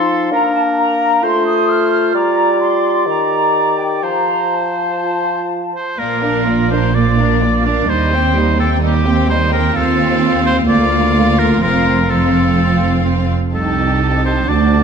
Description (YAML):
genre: classical, dramatic, fast romantic movement for symphony orchestra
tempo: 119-133 BPM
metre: 4/4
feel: rubato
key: Bb major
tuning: A4 = 440 Hz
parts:
  - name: clear oboe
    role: second line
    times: 0.0-14.8 s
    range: G4 to D5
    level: -20 LUFS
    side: right 1 dB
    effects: none
  - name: large flute ensemble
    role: second line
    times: 0.0-5.7 s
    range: G5 to F6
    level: -17 LUFS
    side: left 1 dB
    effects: none
  - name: warm clarinet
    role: second line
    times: 0.0-5.7 s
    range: D4 to G4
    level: -20 LUFS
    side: left 3 dB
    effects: none
  - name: mellow bassoon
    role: accompaniment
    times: 0.0-5.7 s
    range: Eb3 to Bb3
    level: -18 LUFS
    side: equal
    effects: none
  - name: warm symphonic violin section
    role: melody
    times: 6.0-14.8 s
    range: D5 to A5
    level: -26 LUFS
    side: left 4 dB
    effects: none
  - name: warm symphonic violin section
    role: second line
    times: 6.0-14.8 s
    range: Eb4 to Bb4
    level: -23 LUFS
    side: left 6 dB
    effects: none
  - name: rich symphonic viola section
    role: accompaniment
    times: 6.0-14.8 s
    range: G3 to Eb4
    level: -18 LUFS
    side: right 2 dB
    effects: none
  - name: rich symphonic double bass section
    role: bass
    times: 6.0-14.8 s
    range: F1 to Eb2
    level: -18 LUFS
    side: right 3 dB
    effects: none
  - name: warm symphonic cello section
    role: bass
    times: 6.0-14.8 s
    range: C2 to Bb2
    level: -18 LUFS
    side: right 3 dB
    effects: none
room: wet scoring stage reverb, RT60 1.6 s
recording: dark, warm production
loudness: -12 LUFS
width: side -6 dB against mid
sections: 0.0-6.0 A section; 6.0-14.8 B section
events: none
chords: 0.3 Bb; 1.2 F/A; 2.1 Gm7; 3.1 Ebmaj7; 4.0 F; 6.0 Bb; 7.9 Cm/Eb; 9.8 F7/Eb; 10.7 Bb/D; 11.6 F; 13.5 Am7b5/C